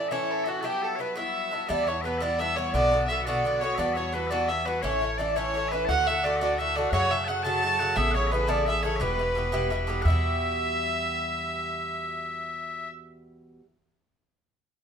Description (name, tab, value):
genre	celtic folk, Celtic jig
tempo	115 BPM (dotted quarters)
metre	6/8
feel	straight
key	E dorian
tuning	A4 = 440 Hz
part	dark fiddle	melody	0.0-12.9 s	F#4 to A5	-28 LUFS	right 2 dB	none
part	loud bright bagpipes	second line	0.0-12.9 s	F#4 to A5	-33 LUFS	left 4 dB	none
part	Irish bouzouki	accompaniment	0.0-13.7 s	G2 to A4	-29 LUFS	left 1 dB	none
part	upright bass	bass	1.7-13.6 s	E1 to F#2	-31 LUFS	equal	none
room	moderate studio reverb, RT60 0.7 s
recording	minimal, uncompressed stereo recording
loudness	-24 LUFS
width	side -7 dB against mid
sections	0.0-1.7 A section; 1.7-10.0 B section; 10.0-12.1 C section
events	none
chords	0.0 A; 0.6 Emadd9; 1.7 Em; 2.7 Bm; 3.8 Emadd9; 4.8 A; 5.9 D; 6.9 F#m; 8.0 Aadd9; 9.0 Em